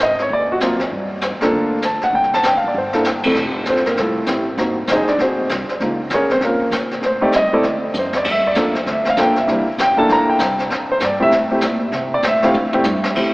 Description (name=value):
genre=jazz piano trio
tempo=196 BPM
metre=4/4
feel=swing 62% on 8ths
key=F major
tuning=A4 = 441 Hz
part: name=warm grand piano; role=melody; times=0.0-13.3 s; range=F2 to Bb5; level=-16 LUFS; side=equal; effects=none
part: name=upright bass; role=bass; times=0.0-13.3 s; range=F1 to C3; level=-28 LUFS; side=equal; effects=none
part: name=jazz brush drum kit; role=drums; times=0.2-13.3 s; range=brushed snare drum, crash cymbal, hi-hat, kick drum, snare drum, toms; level=-22 LUFS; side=equal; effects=none
room=wet cathedral reverb, RT60 6.3 s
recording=recorded in a church or concert hall, AM radio sound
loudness=-15 LUFS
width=side -23 dB against mid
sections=0.0-3.4 A section; 3.4-13.2 B section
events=drum fill 2.7-3.0, 7.9-8.3, 12.5-13.2; grand piano solo 3.4-13.3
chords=0.0 Ab7(no3); 0.9 Gm9; 2.1 C5; 3.4 Fmaj7; 4.6 Ab7; 5.8 Db6; 7.0 Am7b5; 7.6 D; 8.3 Gm7; 9.5 C7; 10.7 Fmaj7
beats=0.00 0.30 0.60 | 0.91 1.22 1.52 1.82 | 2.13 2.44 2.74 3.05 | 3.35 3.66 3.96 4.27 | 4.58 4.88 5.19 5.50 | 5.80 6.11 6.42 6.72 | 7.03 7.33 7.64 7.95 | 8.25 8.56 8.86 9.17 | 9.47 9.78 10.09 10.39 | 10.70 11.01 11.31 11.62 | 11.92 12.23 12.54 12.84 | 13.15